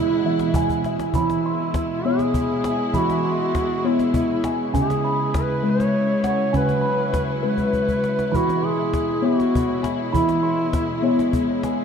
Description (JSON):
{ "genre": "world meditative, meditative tuned percussion", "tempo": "67 BPM (dotted quarters)", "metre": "6/8", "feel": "straight", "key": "E major pentatonic", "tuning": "A4 = 440 Hz", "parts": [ { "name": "mellow duduk", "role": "melody", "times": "0.0-11.3 s", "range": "E4 to C#5", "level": "-25 LUFS", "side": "right 1 dB", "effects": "shimmer reverb, diffuse ambient delay" }, { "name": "dark studio string section", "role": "sustained chords", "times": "0.0-11.8 s", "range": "B2 to E4", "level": "-28 LUFS", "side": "left 1 dB", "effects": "shimmer reverb" }, { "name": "steel tongue drum", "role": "arpeggios", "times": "0.0-11.8 s", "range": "C#3 to C6", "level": "-21 LUFS", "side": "equal", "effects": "shimmer reverb, diffuse ambient delay" }, { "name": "cajon", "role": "percussion", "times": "0.4-11.8 s", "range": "none", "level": "-26 LUFS", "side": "left 2 dB", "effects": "none" } ], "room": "wet scoring stage reverb, RT60 1.8 s, small room ambience", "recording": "dark, warm production", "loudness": "-19 LUFS", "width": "side -7 dB against mid", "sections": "0.0-1.2 A section; 1.2-11.8 B section", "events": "drum fill 0.7-1.2, 7.6-8.3", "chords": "0.0 E; 4.7 C#m; 8.3 E", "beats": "0.26 | 1.16 2.05 | 2.95 3.84 | 4.74 5.64 | 6.53 7.43 | 8.33 9.23 | 10.13 11.03" }